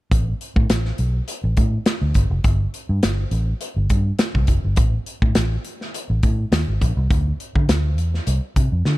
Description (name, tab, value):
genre	polished 1980s jazz-funk pop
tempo	103 BPM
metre	4/4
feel	swing 54% on 16ths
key	unclear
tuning	A4 = 440 Hz
part	vintage muted fingered electric bass	bass	0.1-9.0 s	F1 to D3	-20 LUFS	equal	none
part	modern studio drum kit	drums	0.1-9.0 s	hi-hat, kick drum, snare drum	-20 LUFS	equal	none
room	little or no reverb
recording	none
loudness	-18 LUFS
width	side -18 dB against mid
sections	0.1-9.0 A section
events	none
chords	none